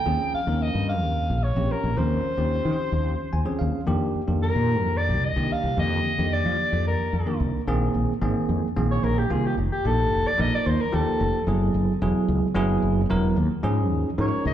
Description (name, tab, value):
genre	jazz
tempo	221 BPM (eighths)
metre	7/8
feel	straight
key	F minor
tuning	A4 = 440 Hz
part	breathy soprano saxophone	melody	0.0-14.5 s	Eb4 to G5	-27 LUFS	left 1 dB	slapback echo
part	bell-like tine electric piano	accompaniment	0.1-14.5 s	D3 to Ab5	-26 LUFS	right 1 dB	fast stereo tremolo, slapback echo
part	fretless electric bass	bass	0.1-14.5 s	Fb1 to F3	-24 LUFS	equal	ensemble chorus
room	light reverb, small room ambience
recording	live gig heard through the venue's PA, club reverb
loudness	-21 LUFS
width	side -11 dB against mid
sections	0.0-7.7 A section; 7.7-14.5 B section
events	tine electric piano fill 3.1-3.9; soprano saxophone solo 7.7-14.5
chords	0.1 Eb13sus4; 3.9 F13sus4; 7.7 Bb9sus4; 9.6 F9sus4; 11.5 Gb9sus4; 13.4 Eb9sus4